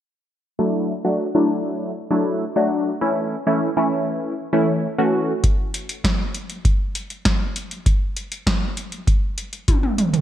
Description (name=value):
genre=synth-pop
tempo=99 BPM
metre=4/4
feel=straight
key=D major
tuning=A4 = 440 Hz
part: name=funky polysynth comp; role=accompaniment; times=0.6-5.3 s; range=E3 to F#4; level=-19 LUFS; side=equal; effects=chorus, phaser, low-pass filter
part: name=electro analog drum machine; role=drums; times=5.4-10.2 s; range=hi-hat, kick drum, snare drum, toms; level=-19 LUFS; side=equal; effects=gated reverb
room=moderate concert hall reverb, RT60 2.1 s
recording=none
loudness=-19 LUFS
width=side -11 dB against mid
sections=0.6-10.2 A section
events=drum fill 9.7-10.2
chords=0.6 Dadd9; 3.0 A; 5.4 N.C.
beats=| 0.59 1.20 1.80 2.41 | 3.01 3.62 4.22 4.83 | 5.44 6.04 6.65 7.25 | 7.86 8.47 9.07 9.68